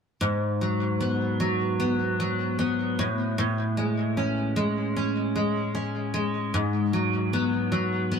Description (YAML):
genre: indie pop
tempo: 76 BPM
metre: 4/4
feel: straight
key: G# minor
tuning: A4 = 440 Hz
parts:
  - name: picked steel-string acoustic guitar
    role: solo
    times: 0.2-8.2 s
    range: G#2 to C#4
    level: -24 LUFS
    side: equal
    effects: lush chorus, vibrato effect, tape echo
room: light reverb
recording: none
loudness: -24 LUFS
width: side -6 dB against mid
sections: 0.2-8.2 A section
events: none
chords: 0.2 G#m7; 3.0 Amaj7; 6.5 G#m7